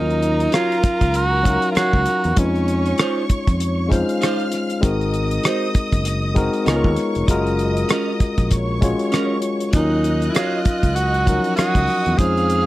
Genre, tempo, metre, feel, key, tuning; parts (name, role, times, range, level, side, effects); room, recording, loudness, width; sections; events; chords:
lush 1970s-style soul; 98 BPM; 4/4; swing 58% on 16ths; A4 = 440 Hz
breathy tenor saxophone; melody; 0.0-3.3, 9.7-12.7 s; Db4 to Ab4; -20 LUFS; right 2 dB
warm studio violin section; second line; 0.0-12.7 s; Bb4 to Gb6; -29 LUFS; equal
barky tine electric piano; accompaniment; 0.0-12.7 s; F3 to F5; -22 LUFS; left 3 dB
fingered electric bass; bass; 0.0-12.7 s; F1 to F2; -22 LUFS; equal
damped 70s drum kit; drums; 0.1-12.7 s; hi-hat, kick drum, rim click; -19 LUFS; equal
clean electric guitar; riff; 0.5-11.8 s; Cb4 to F5; -24 LUFS; right 5 dB
light reverb; dry, close 1970s-style studio recording; -16 LUFS; side -16 dB against mid
0.0-12.7 A section
0.0 Ebm9; 2.4 Dbmaj9/F; 4.8 Ab7; 6.7 Db13; 7.3 Gbmaj7; 9.7 Ebm9